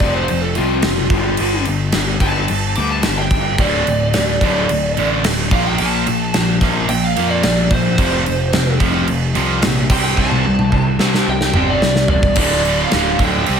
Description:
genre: hard rock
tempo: 109 BPM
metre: 4/4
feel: straight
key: D minor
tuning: A4 = 439 Hz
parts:
  - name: lead guitar through a small cranked amp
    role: melody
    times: 0.0-13.6 s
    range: F4 to D6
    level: -21 LUFS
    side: right 2 dB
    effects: overdrive
  - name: distorted electric guitar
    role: riff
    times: 0.0-13.6 s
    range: D2 to C4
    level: -21 LUFS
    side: left 10 dB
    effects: distortion
  - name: fuzz picked electric bass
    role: bass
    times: 0.0-13.6 s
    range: D1 to F2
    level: -21 LUFS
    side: equal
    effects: overdrive
  - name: gated 80s drum kit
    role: drums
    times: 0.0-13.6 s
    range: crash cymbal, kick drum, snare drum, toms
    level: -18 LUFS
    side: equal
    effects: none
  - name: cranked stack guitar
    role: riff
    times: 3.6-13.6 s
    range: D2 to C4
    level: -21 LUFS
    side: right 11 dB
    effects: overdrive
room: light reverb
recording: none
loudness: -14 LUFS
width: side -7 dB against mid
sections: 0.0-12.4 A section; 12.4-13.6 B section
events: lead electric guitar solo 0.0-12.4; drum fill 10.2-12.4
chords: 0.0 F5; 1.1 G5; 3.6 D5; 5.5 Bb5; 8.0 F5; 9.9 C5; 12.4 D5

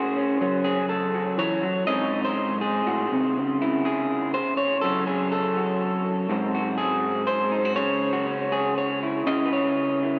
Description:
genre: folk, solo fingerstyle acoustic guitar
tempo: 122 BPM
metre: 3/4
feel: straight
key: C# harmonic minor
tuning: A4 = 441 Hz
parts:
  - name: electric guitar through a small old amp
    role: solo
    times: 0.0-10.2 s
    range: G#2 to D#5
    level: -24 LUFS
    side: equal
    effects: subtle chorus, analog delay
room: wet huge ambient reverb, RT60 7.8 s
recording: dreamy mix soaked in reverb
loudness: -25 LUFS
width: mono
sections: 0.0-9.3 A section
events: none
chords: 0.4 F#m; 1.9 G#; 3.4 N.C.; 4.8 F#m; 6.3 G#7; 7.8 C#m

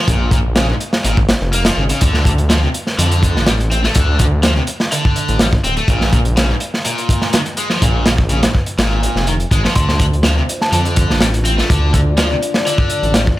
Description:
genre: breakbeat, breaks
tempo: 124 BPM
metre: 4/4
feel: straight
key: D minor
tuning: A4 = 440 Hz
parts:
  - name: cranked stack guitar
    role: riff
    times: 0.0-13.2 s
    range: Ab2 to C4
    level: -20 LUFS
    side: equal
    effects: overdrive, tube saturation, dub echo
  - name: detuned saw bass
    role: bass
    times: 0.1-13.3 s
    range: D1 to F2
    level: -16 LUFS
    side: equal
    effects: none
  - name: crunchy breakbeat drum kit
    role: drums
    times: 0.1-13.4 s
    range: hi-hat, kick drum, snare drum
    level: -15 LUFS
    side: equal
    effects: none
  - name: glassy synth bell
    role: melody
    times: 9.8-10.8 s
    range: A5 to C6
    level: -23 LUFS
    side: equal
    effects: chorus, AM radio sound, dub echo
  - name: dark analog pad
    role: sustained chords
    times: 9.8-13.4 s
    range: D4 to D5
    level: -23 LUFS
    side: left 3 dB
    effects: chorus, sidechain pumping
room: light reverb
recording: none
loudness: -12 LUFS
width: side -16 dB against mid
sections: 0.0-13.4 A section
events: none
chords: 0.0 Bbm7; 2.0 Dm; 5.9 Bb7(no3); 9.8 Dm7

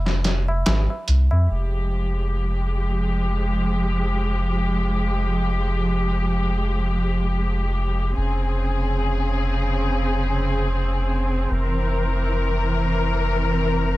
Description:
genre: trip hop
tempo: free time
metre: none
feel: none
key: F harmonic minor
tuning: A4 = 442 Hz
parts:
  - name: soft dub sub bass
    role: bass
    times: 0.0-14.0 s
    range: F1 to F2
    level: -22 LUFS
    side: equal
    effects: none
  - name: trip hop sampler-style drum kit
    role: drums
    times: 0.1-1.3 s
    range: hi-hat, snare drum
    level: -24 LUFS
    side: equal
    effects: overdrive
  - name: tabla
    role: percussion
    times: 0.1-1.5 s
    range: none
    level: -32 LUFS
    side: right 1 dB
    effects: none
  - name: muted studio string section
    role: sustained chords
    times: 1.5-14.0 s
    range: Db3 to Bb4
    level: -24 LUFS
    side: equal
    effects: none
room: light reverb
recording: none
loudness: -20 LUFS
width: side -17 dB against mid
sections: 0.0-1.5 A section; 1.5-14.0 B section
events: none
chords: 0.0 Fm; 1.5 Fmadd9; 8.2 Dbmaj7/F; 11.5 C7/F

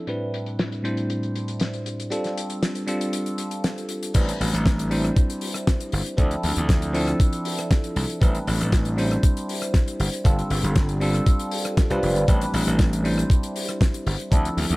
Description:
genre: nu-disco, nu disco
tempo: 118 BPM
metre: 4/4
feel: straight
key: A minor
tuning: A4 = 438 Hz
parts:
  - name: bell-like tine electric piano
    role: accompaniment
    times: 0.0-14.8 s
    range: A2 to C5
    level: -26 LUFS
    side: equal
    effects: phaser, tape echo
  - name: damped 70s drum kit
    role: drums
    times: 0.1-14.8 s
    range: crash cymbal, hi-hat, rim click, snare drum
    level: -29 LUFS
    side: left 1 dB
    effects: none
  - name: gritty slap bass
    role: bass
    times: 4.1-14.8 s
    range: F1 to D2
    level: -24 LUFS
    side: equal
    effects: overdrive
  - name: electronic kick drum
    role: drums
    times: 4.1-14.4 s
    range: none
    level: -19 LUFS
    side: equal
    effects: none
room: small room ambience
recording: low-pass filter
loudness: -20 LUFS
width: side -21 dB against mid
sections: 0.0-4.1 A section; 4.1-14.8 B section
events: filter sweep 0.0-4.1; drop 4.1-14.8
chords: 0.1 Am11; 2.1 G7sus4; 4.1 Am11; 6.2 Dm7; 8.2 Am11; 10.2 G7sus4; 12.3 Am11

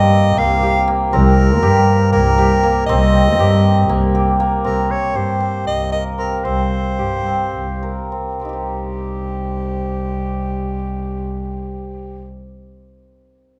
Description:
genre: contemporary instrumental, chamber music in an uneven meter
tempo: 203-239 BPM (eighths)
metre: 7/8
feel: straight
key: C minor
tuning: A4 = 440 Hz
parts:
  - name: breathy soprano saxophone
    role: melody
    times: 0.0-12.3 s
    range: G4 to F5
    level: -24 LUFS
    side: equal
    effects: none
  - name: hammered dulcimer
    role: arpeggios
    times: 0.0-12.4 s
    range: Bb3 to C5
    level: -22 LUFS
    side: equal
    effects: none
  - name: warm double bass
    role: bass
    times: 0.0-12.3 s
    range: C2 to G2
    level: -20 LUFS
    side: equal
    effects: none
room: moderate recital hall reverb, RT60 1.4 s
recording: none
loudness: -17 LUFS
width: mono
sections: 0.0-4.6 A section; 4.6-8.4 B section; 8.4-12.5 C section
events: slowing down 4.6-8.4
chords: 0.0 C5; 8.4 Cm

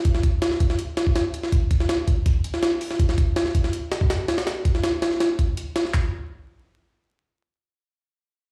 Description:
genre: drum and bass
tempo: 163 BPM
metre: 4/4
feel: straight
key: none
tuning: none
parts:
  - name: jungle sampler-style drum kit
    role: drums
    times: 0.0-6.0 s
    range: handclaps, hi-hat, kick drum, snare drum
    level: -23 LUFS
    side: equal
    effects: small room ambience
room: moderate plate reverb, RT60 1.3 s, digital ambience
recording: played on a big sound system in a bare room, large studio reverb, vinyl crackle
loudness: -23 LUFS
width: mono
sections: 0.0-5.9 A section; 5.9-7.4 B section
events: none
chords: none

